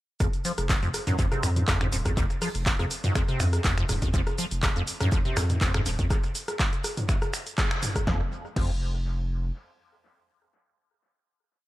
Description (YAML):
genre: acid house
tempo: 122 BPM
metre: 4/4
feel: straight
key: unclear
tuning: A4 = 440 Hz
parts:
  - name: liquid acid bass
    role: riff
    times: 0.2-8.7 s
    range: Eb2 to F3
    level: -30 LUFS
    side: equal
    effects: tube saturation, wide subtle chorus, dub echo
  - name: saturated sub bass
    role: bass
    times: 0.2-9.5 s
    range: Eb1 to F2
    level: -29 LUFS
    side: equal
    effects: sidechain pumping
  - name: electronic kick drum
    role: drums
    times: 0.2-8.7 s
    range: none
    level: -27 LUFS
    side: equal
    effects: none
  - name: punchy analog drum machine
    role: drums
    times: 0.2-8.7 s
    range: cabasa, crash cymbal, finger snaps, handclaps, hi-hat, rim click, snare drum, toms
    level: -29 LUFS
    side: equal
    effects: analog delay
  - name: soft brush drum kit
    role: drums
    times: 0.2-6.0 s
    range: hi-hat, snare drum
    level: -42 LUFS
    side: right 1 dB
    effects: none
room: digital ambience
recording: echo-heavy mix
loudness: -24 LUFS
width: side -16 dB against mid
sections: 0.2-8.1 drop; 8.1-11.7 final note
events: drop 0.2-8.1; band accent 7.6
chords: 0.2 F5; 8.1 N.C.